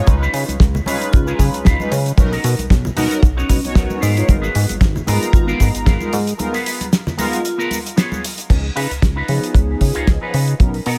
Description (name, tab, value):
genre	nu-disco, nu disco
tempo	114 BPM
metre	4/4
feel	swing 55% on 16ths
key	unclear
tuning	A4 = 439 Hz
part	mellow synth brass	accompaniment	0.0-10.8 s	E#3 to A#5	-27 LUFS	equal	chorus, phaser, tape echo
part	electric guitar with an envelope filter	riff	0.1-11.0 s	B3 to C#5	-28 LUFS	equal	analog chorus, tape echo
part	chorused synth bass	bass	0.1-11.0 s	G#1 to C#3	-22 LUFS	equal	none
part	damped 70s drum kit	drums	0.1-11.0 s	crash cymbal, hi-hat, shaker, snare drum	-25 LUFS	equal	none
part	kick drum	drums	0.1-10.7 s	none	-15 LUFS	equal	none
part	congas	percussion	0.1-8.2 s	none	-30 LUFS	equal	none
part	vibraphone with medium hard mallets	melody	1.1-7.5 s	C#4 to E#4	-29 LUFS	equal	dub echo
room	small room reverb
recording	none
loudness	-17 LUFS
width	mono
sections	0.0-8.5 A section; 8.5-11.0 B section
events	drop 0.0-8.5; break 6.4-8.5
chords	0.1 C#9; 2.2 Bmaj7; 4.0 G#m69; 8.5 C#9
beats	| 0.08 0.60 1.13 1.66 | 2.18 2.71 3.23 3.76 | 4.29 4.81 5.34 5.87 | 6.39 6.92 7.45 7.97 | 8.50 9.02 9.55 10.08 | 10.60